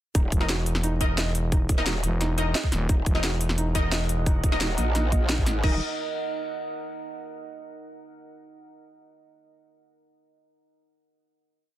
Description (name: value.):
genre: dark technical drum and bass.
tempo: 175 BPM.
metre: 4/4.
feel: straight.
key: Eb phrygian.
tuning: A4 = 439 Hz.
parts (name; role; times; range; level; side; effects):
felt-muted upright piano; arpeggios; 0.1-5.8 s; Eb4 to Eb5; -35 LUFS; right 3 dB; sidechain pumping, tape echo.
growl bass; bass; 0.1-5.8 s; Eb1 to Bb1; -26 LUFS; equal; chorus, overdrive.
drum and bass drum kit; drums; 0.1-5.7 s; crash cymbal, hi-hat, snare drum; -30 LUFS; equal; none.
electronic kick drum; drums; 0.1-5.7 s; none; -23 LUFS; equal; overdrive.
growling FM bass; bass; 0.3-4.4 s; Eb1 to Fb1; -26 LUFS; equal; none.
orchestra-hit-like synth stab; stabs; 0.4-5.8 s; Eb4 to Eb5; -33 LUFS; left 2 dB; built-in reverb, tape echo.
deep dark ambient pad; sustained chords; 3.6-5.8 s; Eb4 to Gb5; -34 LUFS; right 3 dB; chorus, built-in reverb, sidechain pumping.
room: digital ambience.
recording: dense, heavily limited modern master.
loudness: -22 LUFS.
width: side -13 dB against mid.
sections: 0.1-5.6 drop; 5.6-7.0 final chord.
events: drop 0.1-5.6.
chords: 0.1 Ebm.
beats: | 0.15 0.49 0.84 1.18 | 1.52 1.86 2.21 2.55 | 2.89 3.24 3.58 3.92 | 4.26 4.61 4.95 5.29 | 5.64.